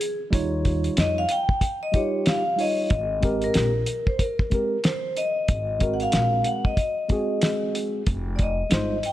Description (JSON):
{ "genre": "hip hop, jazz-hop", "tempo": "93 BPM", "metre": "4/4", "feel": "swing 61% on 16ths", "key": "Ab major", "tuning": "A4 = 440 Hz", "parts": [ { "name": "vibraphone with medium hard mallets", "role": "melody", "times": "0.0-9.1 s", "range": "Ab4 to G5", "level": "-26 LUFS", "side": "left 2 dB", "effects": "none" }, { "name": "cloth-damped thuddy drum kit", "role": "drums", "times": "0.0-9.1 s", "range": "hi-hat, kick drum, snare drum", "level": "-24 LUFS", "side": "equal", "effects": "vintage 12-bit sampler grit" }, { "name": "mellow tine electric piano", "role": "accompaniment", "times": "0.3-9.0 s", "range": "G3 to Db5", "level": "-28 LUFS", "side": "right 2 dB", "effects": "slow stereo tremolo" }, { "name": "upright bass", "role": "bass", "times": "0.3-9.0 s", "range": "F1 to F2", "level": "-27 LUFS", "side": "equal", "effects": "none" } ], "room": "light reverb, small room ambience", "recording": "none", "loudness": "-21 LUFS", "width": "side -14 dB against mid", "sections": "0.0-2.9 A section; 2.9-9.1 B section", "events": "vibraphone solo 0.0-2.9", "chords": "0.3 Eb9; 2.9 Abmaj9; 5.5 Ab9; 8.1 Fm7", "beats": "| 0.33 0.97 1.62 2.26 | 2.91 3.55 4.20 4.84 | 5.49 6.13 6.78 7.42 | 8.07 8.71" }